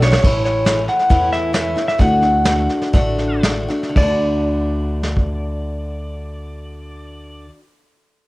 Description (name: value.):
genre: honky-tonk and classic country.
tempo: 112-140 BPM.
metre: 4/4.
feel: straight.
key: D major.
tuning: A4 = 440 Hz.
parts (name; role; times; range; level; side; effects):
pedal steel guitar; melody; 0.0-7.5 s; C#5 to F#5; -20 LUFS; equal; none.
picked steel-string acoustic guitar; accompaniment; 0.0-7.6 s; A2 to F#4; -23 LUFS; left 1 dB; plate reverb.
upright bass; bass; 0.0-7.5 s; A1 to E2; -21 LUFS; equal; none.
vintage brush drum kit; drums; 0.0-5.3 s; crash cymbal, hi-hat, kick drum, snare drum; -19 LUFS; equal; cassette tape.
room: light reverb.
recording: home recording on cassette.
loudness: -15 LUFS.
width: side -20 dB against mid.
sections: 0.2-4.0 A section; 4.0-8.2 B section.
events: drum fill 0.0; slowing down 0.2-4.0.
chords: 0.2 A; 2.0 D.